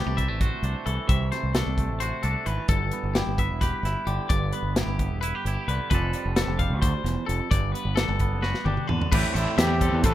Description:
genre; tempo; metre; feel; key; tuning
math rock and midwest emo; 262 BPM (eighths); 7/8; straight; G major; A4 = 440 Hz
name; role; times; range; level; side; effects
twangy electric guitar; accompaniment; 0.0-10.1 s; D2 to A4; -32 LUFS; right 7 dB; wide subtle chorus
twangy electric guitar; arpeggios; 0.0-10.1 s; G4 to F5; -31 LUFS; left 8 dB; none
growling fingered electric bass; bass; 0.0-10.1 s; E1 to E2; -27 LUFS; equal; overdrive
modern studio drum kit; drums; 0.2-10.1 s; crash cymbal, hi-hat, kick drum, snare drum, toms; -26 LUFS; equal; none
overdriven electric guitar; riff; 9.1-10.1 s; A2 to E4; -30 LUFS; right 1 dB; harmonic tremolo
breathy trumpet; melody; 9.4-10.1 s; E4 to A4; -27 LUFS; equal; none
room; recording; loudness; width
small room ambience; rough home demo mix; -23 LUFS; side -13 dB against mid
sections
0.0-9.1 A section; 9.1-10.1 B section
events
drum fill 8.4-9.1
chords
0.0 C69; 2.7 G6; 5.9 F69; 7.5 Gmaj9; 9.1 Am11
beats
0.18 0.41 0.64 0.87 | 1.10 1.33 1.56 1.79 2.02 2.25 2.48 | 2.70 2.93 3.16 3.39 3.62 3.85 4.08 | 4.31 4.54 4.77 5.00 5.23 5.46 5.69 | 5.92 6.15 6.38 6.61 6.83 7.06 7.29 | 7.52 7.75 7.98 8.21 8.44 8.67 8.89 | 9.12 9.35 9.58 9.81 10.04

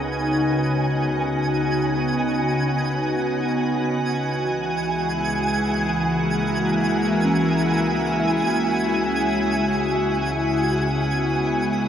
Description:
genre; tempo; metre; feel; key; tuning
ambient; free time; none; none; unclear; A4 = 441 Hz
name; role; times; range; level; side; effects
soft additive organ-like pad; sustained chords; 0.0-11.9 s; C#3 to F#4; -21 LUFS; left 1 dB; ensemble chorus, built-in reverb
soft synth bell; arpeggios; 0.0-11.9 s; C#4 to D#6; -33 LUFS; left 1 dB; none
warm symphonic double bass section; bass; 0.0-11.9 s; C#2; -34 LUFS; equal; none
twinkling granular texture; texture; 0.0-11.9 s; G#5; -26 LUFS; right 3 dB; built-in reverb
room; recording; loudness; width
wet cathedral reverb, RT60 4.7 s; none; -19 LUFS; side -9 dB against mid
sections
0.0-11.9 A section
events
fade-in on double bass section 0.0-11.9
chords
0.0 Bmaj9/C#; 4.0 Eadd9/C#; 8.5 F#9sus4/C#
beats
free time

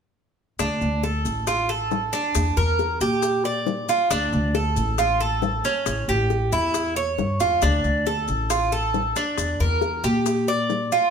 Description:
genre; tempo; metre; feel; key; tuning
latin, Cuban son and guajira; 136 BPM; 4/4; straight; D harmonic minor; A4 = 440 Hz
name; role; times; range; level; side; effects
Cuban tres; arpeggios; 0.6-11.1 s; C#4 to D5; -22 LUFS; right 2 dB; none
upright bass; bass; 0.6-10.9 s; A1 to Bb2; -25 LUFS; left 1 dB; none
bongos; percussion; 0.6-11.1 s; none; -30 LUFS; left 8 dB; none
maracas; percussion; 0.6-11.1 s; none; -35 LUFS; left 9 dB; none
room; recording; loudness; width
wet stone room reverb, RT60 1.1 s; band playing live in one room; -20 LUFS; side -6 dB against mid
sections
0.6-11.1 A section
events
none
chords
0.6 Dm; 2.4 Em7b5; 4.1 Dm; 5.9 A7; 7.6 Dm; 9.4 Em7b5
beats
| 0.59 1.03 1.47 1.91 | 2.35 2.79 3.23 3.67 | 4.11 4.55 4.99 5.42 | 5.86 6.30 6.74 7.18 | 7.62 8.06 8.50 8.94 | 9.38 9.82 10.26 10.70

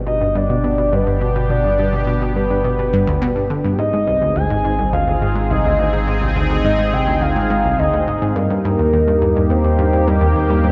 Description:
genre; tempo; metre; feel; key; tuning
ambient, sequencer-driven space music; 105 BPM; 4/4; straight; unclear; A4 = 439 Hz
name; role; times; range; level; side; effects
sweeping resonant pad; sustained chords; 0.0-10.7 s; Bb3 to Ab4; -24 LUFS; equal; chorus
warm sub bass; bass; 0.0-10.7 s; G1 to Eb2; -24 LUFS; equal; none
soft octave-layered synth lead; melody; 0.1-10.7 s; Bb4 to Ab5; -22 LUFS; equal; chorus, phaser, analog delay
analog pluck; riff; 0.1-10.7 s; C2 to D3; -22 LUFS; equal; chorus, analog delay
room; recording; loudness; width
wet lush hall reverb, RT60 3.0 s; dreamy mix soaked in reverb, nothing above 8.0 kHz; -17 LUFS; mono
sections
0.0-10.7 A section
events
fade-in on analog synth pad 0.0-10.7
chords
0.0 G; 3.8 Ab; 8.4 Eb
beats
0.36 0.93 | 1.50 2.07 2.64 3.22 | 3.79 4.36 4.93 5.50 | 6.07 6.64 7.22 7.79 | 8.36 8.93 9.50 10.07 | 10.64

